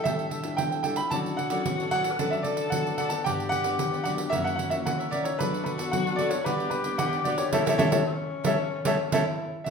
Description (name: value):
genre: samba and choro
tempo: 112 BPM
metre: 4/4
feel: straight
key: unclear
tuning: A4 = 441 Hz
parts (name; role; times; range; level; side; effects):
- clear concert grand piano; melody; 0.0-9.7 s; A4 to B5; -28 LUFS; right 1 dB; none
- breathy tenor saxophone; second line; 0.0-9.6 s; C#4 to B4; -32 LUFS; left 5 dB; none
- cavaquinho; accompaniment; 0.0-9.7 s; D4 to G5; -35 LUFS; right 3 dB; none
- nylon-string guitar; accompaniment; 0.0-9.7 s; F#2 to A4; -33 LUFS; left 4 dB; none
- pandeiro; percussion; 0.1-9.7 s; none; -31 LUFS; right 2 dB; none
room: wet large studio reverb, RT60 1.3 s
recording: minimal, uncompressed stereo recording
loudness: -24 LUFS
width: side -6 dB against mid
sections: 0.0-9.7 A section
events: band accent 7.5-9.7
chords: 0.0 A7sus4; 1.1 Dmaj9; 2.2 Bm9/D; 3.3 Gmaj7; 4.3 F#7; 5.4 Bm7/F#; 6.5 Gmaj7; 7.5 A7